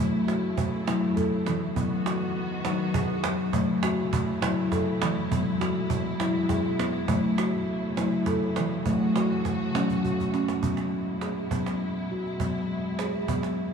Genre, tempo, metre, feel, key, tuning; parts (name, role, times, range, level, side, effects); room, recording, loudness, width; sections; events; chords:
world meditative, meditative tuned percussion; 68 BPM (dotted quarters); 6/8; straight; A4 = 439 Hz
muted studio string section; sustained chords; 0.0-13.7 s; B2 to F#4; -34 LUFS; equal
steel tongue drum; arpeggios; 0.0-13.7 s; E3 to A4; -26 LUFS; left 1 dB
cajon; percussion; 0.1-13.6 s; -31 LUFS; right 4 dB
wet cathedral reverb, RT60 5.2 s; in a vast, echoing space; -24 LUFS; side -6 dB against mid
0.0-10.6 A section; 10.6-13.7 B section
drum fill 9.9-10.6
0.0 A; 1.8 B; 3.5 A; 5.3 E; 7.1 A; 8.9 F#m; 10.6 E